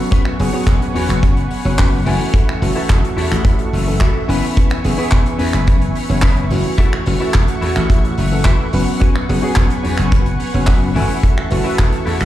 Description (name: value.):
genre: nu-disco, nu disco.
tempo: 108 BPM.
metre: 4/4.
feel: straight.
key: unclear.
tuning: A4 = 440 Hz.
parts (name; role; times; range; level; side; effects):
tine electric piano; accompaniment; 0.0-12.2 s; E3 to G#5; -21 LUFS; equal; overdrive, vintage 12-bit sampler grit, sidechain pumping, tape echo.
lush unison pad; sustained chords; 0.0-12.2 s; A3 to C#6; -26 LUFS; right 1 dB; chorus, sidechain pumping.
semi-hollow electric guitar; riff; 0.0-12.2 s; C#4 to C#5; -26 LUFS; left 3 dB; ensemble chorus, low-pass filter, tape echo.
kick drum; drums; 0.1-11.9 s; none; -15 LUFS; equal; none.
loose indie drum kit; drums; 0.1-12.2 s; finger snaps, handclaps, hi-hat; -25 LUFS; equal; none.
glassy slap bass; bass; 0.4-12.2 s; E1 to E2; -18 LUFS; equal; none.
room: small room ambience.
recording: played on a big sound system in a bare room, large studio reverb.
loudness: -13 LUFS.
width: side -13 dB against mid.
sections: 0.0-12.2 A section.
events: none.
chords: 0.1 C#7sus4; 2.1 F#m7; 4.3 C#m7; 9.0 C#7sus4; 11.0 F#m7.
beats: | 0.12 0.68 1.23 1.79 | 2.34 2.90 3.46 4.01 | 4.57 5.12 5.68 6.23 | 6.79 7.34 7.90 8.46 | 9.01 9.57 10.12 10.68 | 11.23 11.79.